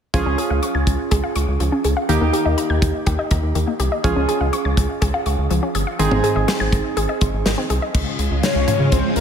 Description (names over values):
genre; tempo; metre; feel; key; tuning
synth-pop; 123 BPM; 4/4; straight; Db lydian; A4 = 442 Hz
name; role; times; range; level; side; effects
warm analog keys; accompaniment; 0.1-7.9 s; Bb3 to Ab4; -22 LUFS; right 3 dB; chorus
wide unison pluck; arpeggios; 0.1-7.9 s; Eb3 to Ab6; -24 LUFS; left 2 dB; diffuse ambient delay
rubbery square bass; bass; 0.1-9.2 s; G1 to Db3; -21 LUFS; equal; none
modern studio drum kit; drums; 0.1-9.2 s; crash cymbal, hi-hat, kick drum, snare drum, toms; -22 LUFS; equal; none
string machine, full ensemble; sustained chords; 7.9-9.2 s; Db3 to F4; -22 LUFS; right 1 dB; phaser, ensemble chorus
fat analog lead; melody; 8.4-9.2 s; Bb4 to Db5; -21 LUFS; left 8 dB; diffuse ambient delay
room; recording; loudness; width
moderate lush hall reverb, RT60 1.7 s, small room reverb; dreamy mix soaked in reverb; -17 LUFS; side -8 dB against mid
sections
0.1-7.9 A section; 7.9-9.2 B section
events
none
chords
0.1 Db; 2.1 Eb; 4.0 Db; 6.0 Ab; 7.9 Db